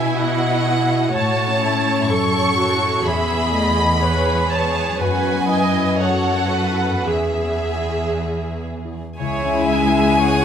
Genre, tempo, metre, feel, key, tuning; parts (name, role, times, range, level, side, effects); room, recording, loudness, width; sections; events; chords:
cinematic, emotional film score for orchestra; 55-63 BPM; 4/4; rubato; E major; A4 = 441 Hz
warm symphonic violin section; melody; 0.0-10.4 s; E5 to C#6; -22 LUFS; equal
rich symphonic violin section; second line; 0.0-10.4 s; C#4 to E5; -25 LUFS; equal
rich studio viola section; accompaniment; 0.0-10.4 s; A3 to E5; -23 LUFS; right 2 dB
concert harp; arpeggios; 0.0-10.4 s; E2 to G#5; -24 LUFS; left 8 dB
rich symphonic cello section; bass; 0.0-10.4 s; E2 to G#3; -24 LUFS; right 3 dB
rich violin; melody; 9.2-10.4 s; G#5; -24 LUFS; left 3 dB
bright large flute ensemble; second line; 9.2-10.4 s; G#5; -22 LUFS; left 1 dB
mellow French horn section; sustained chords; 9.2-10.4 s; G#3 to E4; -24 LUFS; left 3 dB
rich symphonic double bass section; bass; 9.2-10.4 s; C#2; -22 LUFS; right 3 dB
light reverb; close, detailed microphones; -16 LUFS; side -8 dB against mid
0.0-9.2 A section; 9.2-10.4 A section
0.0 Bsus4; 1.1 A; 3.1 E; 5.0 Bsus4/F#; 7.1 E; 9.2 C#m